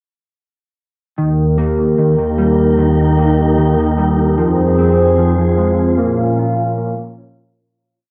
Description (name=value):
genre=hip hop, atmospheric cloud-rap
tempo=150 BPM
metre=4/4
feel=half-time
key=unclear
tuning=A4 = 437 Hz
part: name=hollow soft pad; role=sustained chords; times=1.2-7.6 s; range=Eb2 to F5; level=-16 LUFS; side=equal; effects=chorus, cassette tape
part: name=mellow electric guitar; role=arpeggios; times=1.2-7.6 s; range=Eb3 to F4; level=-19 LUFS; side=equal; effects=ensemble chorus, cassette tape, analog delay
part: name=wind-like tuned noise texture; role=texture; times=2.1-7.6 s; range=Eb4 to Bb5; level=-23 LUFS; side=equal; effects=built-in reverb, cassette tape
room=moderate studio reverb, RT60 0.5 s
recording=home recording on cassette, low-pass filter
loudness=-14 LUFS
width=mono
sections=1.2-7.6 breakdown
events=fade-out 6.0-7.6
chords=1.2 Eb; 4.4 Fm; 6.0 Bbm